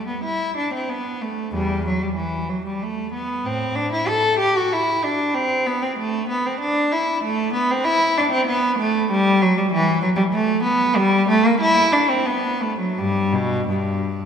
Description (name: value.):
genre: classical, baroque-style suite movement for unaccompanied cello.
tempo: 94 BPM.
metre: 3/4.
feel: rubato.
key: E minor, G major from 7.2 s.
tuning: A4 = 438 Hz.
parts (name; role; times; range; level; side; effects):
rich cello; solo; 0.0-14.3 s; E2 to A4; -18 LUFS; equal; none.
room: wet church reverb, RT60 3.4 s.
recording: recorded in a church or concert hall.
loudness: -18 LUFS.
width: side -7 dB against mid.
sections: 0.0-14.3 A section.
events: none.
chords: none.